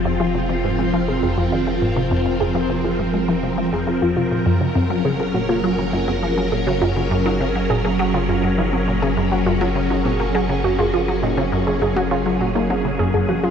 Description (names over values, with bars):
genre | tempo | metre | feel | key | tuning
ambient, sequencer-driven space music | 102 BPM | 4/4 | straight | unclear | A4 = 440 Hz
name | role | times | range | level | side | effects
phased string machine | sustained chords | 0.0-13.5 s | F3 to Bb4 | -21 LUFS | equal | ensemble chorus, phaser
warbly dusty pluck | arpeggios | 0.0-13.5 s | C4 to Ab4 | -24 LUFS | moving between left 3 dB and right 6 dB | chorus, auto-pan, tape echo
warm sub bass | bass | 0.0-13.5 s | F1 to Gb1 | -28 LUFS | equal | none
resonant blip pluck | riff | 0.1-13.5 s | F2 to Bb3 | -22 LUFS | equal | phaser, tape echo
room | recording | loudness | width
wet huge ambient reverb, RT60 7.7 s | in a vast, echoing space | -17 LUFS | side -7 dB against mid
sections
0.0-13.5 A section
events
filter sweep on synth arpeggio sound 0.0-13.5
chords
0.0 Fm; 4.5 Gbmaj7